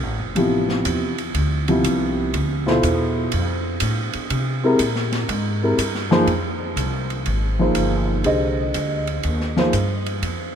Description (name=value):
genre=modal jazz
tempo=122 BPM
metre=4/4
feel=swing 67% on 8ths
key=D dorian, F dorian from 6.3 s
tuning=A4 = 436 Hz
part: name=upright bass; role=bass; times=0.0-10.6 s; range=F1 to C3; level=-24 LUFS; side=equal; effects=none
part: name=dark upright piano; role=accompaniment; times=0.4-9.7 s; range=B2 to Eb5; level=-21 LUFS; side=equal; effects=none
part: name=open jazz drum kit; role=drums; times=0.4-10.4 s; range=hi-hat, ride cymbal, snare drum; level=-27 LUFS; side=right 3 dB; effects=none
room=moderate cathedral reverb, RT60 6.0 s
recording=in a vast, echoing space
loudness=-18 LUFS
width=side -8 dB against mid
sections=0.0-6.3 A section; 6.3-10.6 B section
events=none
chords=0.0 Dm9; 4.3 C7b13; 6.3 Fm9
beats=| 0.36 0.85 1.34 1.84 | 2.33 2.82 3.32 3.81 | 4.30 4.79 5.29 5.78 | 6.28 6.77 7.26 7.76 | 8.25 8.74 9.24 9.73 | 10.22